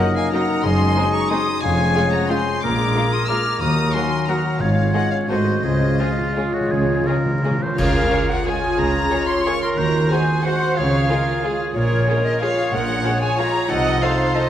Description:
classical, orchestral ballroom waltz; 159-201 BPM; 3/4; rubato; Db major; A4 = 440 Hz
warm chamber violin section; melody; 0.0-14.5 s; Db5 to F6; -26 LUFS; left 3 dB
bright oboe; second line; 0.0-14.5 s; F4 to Eb5; -26 LUFS; right 1 dB
dark studio violin section; second line; 0.0-14.4 s; Eb4 to Db5; -31 LUFS; left 2 dB
silver concert flute; second line; 0.0-14.5 s; Ab4 to D6; -27 LUFS; left 1 dB
warm clarinet; second line; 0.0-14.5 s; Eb4 to Bb4; -29 LUFS; equal
warm chamber viola section; accompaniment; 0.0-14.5 s; Gb3 to Eb5; -26 LUFS; right 1 dB
mellow French horn section; sustained chords; 0.0-14.5 s; Gb3 to Gb4; -29 LUFS; left 3 dB
concert harp; arpeggios; 0.0-14.5 s; F2 to Eb5; -26 LUFS; left 2 dB
dark chamber cello section; bass; 0.6-14.0 s; Eb2 to Eb3; -24 LUFS; right 2 dB
warm chamber double bass section; bass; 0.6-14.0 s; F1 to Eb2; -26 LUFS; right 2 dB
timpani; percussion; 4.6-7.7 s; Ab2 to Db3; -26 LUFS; equal
cymbal swell, clash cymbals and concert bass drum; percussion; 5.6-8.4 s; -28 LUFS; equal
wet scoring stage reverb, RT60 1.8 s; vinyl crackle; -17 LUFS; side -10 dB against mid
0.0-7.8 A section; 7.8-14.5 A section
timpani fill 5.6-7.8; band accent 7.8-8.1
0.0 Ebm7/Gb; 0.6 Ab7/Gb; 1.6 Db/F; 2.6 Bb7; 3.6 Ebm; 4.6 Db/Ab; 5.3 Ab7b9; 5.6 Db; 9.8 Ab7/Eb; 10.8 Db; 11.8 Bbm7; 13.7 F7/C
0.33 | 0.65 0.96 1.30 | 1.63 1.96 2.30 | 2.62 2.95 3.29 | 3.61 3.94 4.28 | 4.60 4.93 5.29 | 5.63 5.99 6.36 | 6.71 7.07 7.44 | 7.78 8.11 8.46 | 8.79 9.11 9.46 | 9.78 10.11 10.45 | 10.77 11.09 11.43 | 11.75 12.07 12.41 | 12.72 13.04 13.38 | 13.69 14.01 14.35

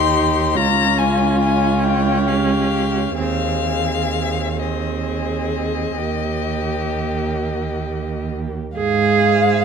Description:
classical, slow romantic movement for string quartet; 42-49 BPM (dotted quarters); 12/8; rubato; Ab major; A4 = 440 Hz
warm violin; melody; 0.0-9.6 s; C5 to C6; -23 LUFS; left 11 dB
dark violin; second line; 0.0-9.6 s; F4 to F5; -24 LUFS; left 3 dB
warm viola; accompaniment; 0.0-9.6 s; Bb3 to Ab4; -22 LUFS; right 5 dB
rich cello; bass; 0.0-9.6 s; Db2 to Ab2; -21 LUFS; right 4 dB
moderate concert hall reverb, RT60 1.9 s; close, detailed microphones; -17 LUFS; side -6 dB against mid
0.0-8.8 A section
0.0 Cm; 0.6 Db; 3.2 Ab/Eb; 6.0 Eb; 8.8 Ab
0.56 1.83 | 3.19 4.59 5.97 7.37 | 8.77

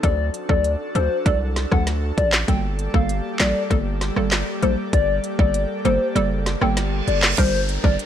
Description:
dancehall; 98 BPM; 4/4; straight; G harmonic minor; A4 = 439 Hz
hollow clarinet-like synth lead; melody; 0.0-8.0 s; C5 to G5; -24 LUFS; left 3 dB; chorus, phaser, ping-pong delay
hollow square pluck; accompaniment; 0.0-8.0 s; F#3 to Bb4; -26 LUFS; equal; chorus
airy breathy pad; sustained chords; 0.0-8.1 s; G3 to D5; -30 LUFS; equal; chorus, sidechain pumping
hard-hitting 808-style bass; bass; 0.0-8.0 s; F#1 to D2; -23 LUFS; equal
island pop drum kit; drums; 0.0-8.1 s; crash cymbal, handclaps, hi-hat, kick drum, rim click, snare drum; -21 LUFS; equal; vintage 12-bit sampler grit
reverse cymbal and downlifter; sound effects; 6.7-8.1 s; -28 LUFS; right 5 dB
digital ambience; -18 LUFS; side -10 dB against mid
0.0-7.4 A section
kick muted 6.2-7.4; reverse cymbal 6.7-7.4
0.0 D; 2.5 Gmadd9; 7.4 Gm
| 0.04 0.65 1.26 1.87 | 2.48 3.10 3.71 4.32 | 4.93 5.54 6.16 6.77 | 7.38 7.99

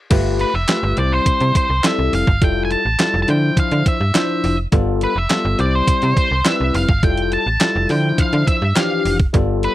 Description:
early-eighties boogie funk; 104 BPM; 4/4; straight; D dorian; A4 = 440 Hz
overdriven tine electric piano; accompaniment; 0.1-9.7 s; E3 to C5; -21 LUFS; left 3 dB; phaser
slap-like FM bass; bass; 0.1-9.7 s; F1 to D3; -19 LUFS; equal
crisp 8-bit digital drum machine; drums; 0.1-9.7 s; crash cymbal, handclaps, hi-hat, kick drum, snare drum; -18 LUFS; right 1 dB; overdrive
octave-fuzz lead guitar; melody; 0.4-9.7 s; B4 to A5; -20 LUFS; equal; distortion, slapback echo
little or no reverb; dry, close 1970s-style studio recording; -14 LUFS; side -14 dB against mid
0.1-9.7 A section
0.1 G9; 1.0 C; 2.4 Fmaj9; 3.3 Dm9; 4.7 G9; 5.6 Cmaj7; 7.0 Fmaj9; 7.9 Dm9
| 0.11 0.69 1.26 1.84 | 2.42 2.99 3.57 4.15 | 4.72 5.30 5.88 6.45 | 7.03 7.61 8.19 8.76 | 9.34

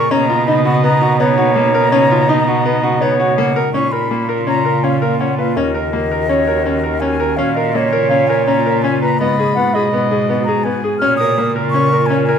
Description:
contemporary instrumental, chamber music in an uneven meter; 165 BPM; 5/4; straight; Bb phrygian; A4 = 439 Hz
wooden flute; melody; 0.0-12.4 s; Db5 to F6; -19 LUFS; left 2 dB
glassy FM pad; sustained chords; 0.0-12.4 s; Cb3 to Gb4; -20 LUFS; equal; ensemble chorus, built-in reverb
bright grand piano; arpeggios; 0.0-12.4 s; A#3 to Cb5; -18 LUFS; left 3 dB
clear cello; bass; 0.0-12.4 s; Eb2 to B2; -21 LUFS; right 4 dB
dark clarinet; second line; 0.1-12.4 s; F4 to Gb5; -19 LUFS; right 2 dB
light reverb; minimal, uncompressed stereo recording; -12 LUFS; side -7 dB against mid
0.0-3.7 A section; 3.7-12.4 B section
0.1 Bmaj9; 3.7 Bbm; 5.6 Ebm7; 7.4 Bbm; 9.2 Abm7; 11.0 Bbm
| 0.11 0.47 0.83 1.20 1.56 | 1.92 2.29 2.65 3.01 3.38 | 3.74 4.10 4.47 4.83 5.19 | 5.56 5.92 6.29 6.65 7.01 | 7.38 7.74 8.11 8.47 8.83 | 9.20 9.56 9.93 10.29 10.65 | 11.02 11.38 11.74 12.11

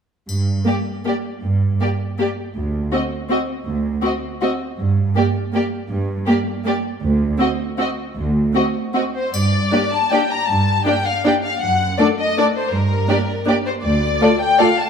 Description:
classical, orchestral ballroom waltz; 159 BPM; 3/4; uneven beats, rubato; G minor; A4 = 441 Hz
rich symphonic cello section; bass; 0.3-14.2 s; D2 to G2; -21 LUFS; right 2 dB
triangle; percussion; 0.3-1.0, 9.3-10.1 s; -33 LUFS; left 3 dB
warm symphonic violin section; melody; 0.7-14.9 s; Bb4 to Bb5; -21 LUFS; left 4 dB
warm symphonic violin section; second line; 0.7-14.7 s; F#4 to D5; -23 LUFS; left 2 dB
warm symphonic viola section; accompaniment; 0.7-14.7 s; A3 to F4; -21 LUFS; right 1 dB
moderate recital hall reverb, RT60 1.7 s; -17 LUFS; side -7 dB against mid
0.3-9.3 A section; 9.3-14.9 B section
0.3 Gm; 2.6 D7(no3); 4.8 Gm; 7.0 D7(no3); 9.3 Gm; 11.6 D/F#; 12.7 Gm; 13.8 Dm
| 0.29 0.66 1.06 | 1.43 1.81 2.20 | 2.56 2.93 3.31 | 3.67 4.04 4.42 | 4.79 5.16 5.54 | 5.90 6.27 6.66 | 7.02 7.39 7.79 | 8.17 8.55 8.94 | 9.33 9.72 10.12 | 10.49 10.86 11.25 | 11.62 11.99 12.37 | 12.73 13.09 13.47 | 13.84 14.21 14.59

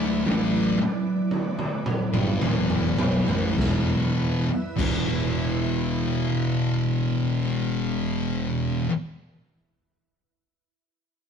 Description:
stoner and doom metal; 50-59 BPM; 4/4; straight; A4 = 439 Hz
organ-like drone; sustained chords; 0.0-7.7 s; E4 to E5; -35 LUFS; right 6 dB; ensemble chorus, built-in reverb
thick fuzz guitar; riff; 0.0-8.9 s; E2 to D4; -25 LUFS; left 4 dB; distortion
thick fuzz guitar; riff; 0.0-8.9 s; E2 to D4; -29 LUFS; right 6 dB; distortion
growling fingered electric bass; bass; 0.0-8.8 s; E1 to D2; -33 LUFS; equal; overdrive, tube saturation
raw garage drum kit; drums; 0.3-5.1 s; crash cymbal, kick drum, snare drum, toms; -26 LUFS; right 1 dB
light reverb; rough rehearsal-room recording, lossy compression artefacts; -22 LUFS; side -7 dB against mid
0.0-3.6 A section; 3.6-8.4 B section
drum fill 0.0-3.6; slowing down 0.0-3.6
0.0 Em; 3.6 E5
0.27 1.32 2.42 | 3.58 4.79 5.99 7.19

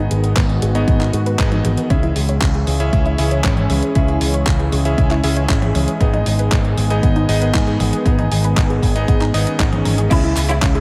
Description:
italo disco; 117 BPM; 4/4; straight; C# minor; A4 = 442 Hz
lush unison pad; sustained chords; 0.0-10.8 s; D#3 to G#4; -25 LUFS; equal; chorus, shimmer reverb
analog pluck; arpeggios; 0.0-10.8 s; B3 to A#5; -29 LUFS; equal; chorus, phaser, tape echo, shimmer reverb
clear electric grand piano; stabs; 0.0-10.8 s; B3 to E5; -27 LUFS; equal; low-pass filter, tape echo, shimmer reverb
picked electric bass with an envelope filter; bass; 0.0-10.8 s; G#1 to G#2; -20 LUFS; equal
clean 12-bit digital drum machine; drums; 0.1-10.8 s; cabasa, crash cymbal, handclaps, hi-hat, toms; -26 LUFS; equal; overdrive
electronic kick drum; drums; 0.4-10.7 s; -20 LUFS; equal
swell; sound effects; 9.5-10.1 s; -32 LUFS; equal
rich chamber violin section; melody; 10.1-10.7 s; E4; -25 LUFS; equal; tape echo
light reverb, digital ambience; -16 LUFS; mono
0.0-10.1 A section
filter sweep on synth arpeggio sound 0.0-10.1; swell 9.5-10.1
0.0 G#m; 1.9 C#m; 6.0 G#m; 10.1 C#m
0.36 0.88 1.39 | 1.90 2.42 2.93 3.44 | 3.96 4.47 4.98 5.49 | 6.01 6.52 7.03 7.54 | 8.06 8.57 9.08 9.60 | 10.11 10.62

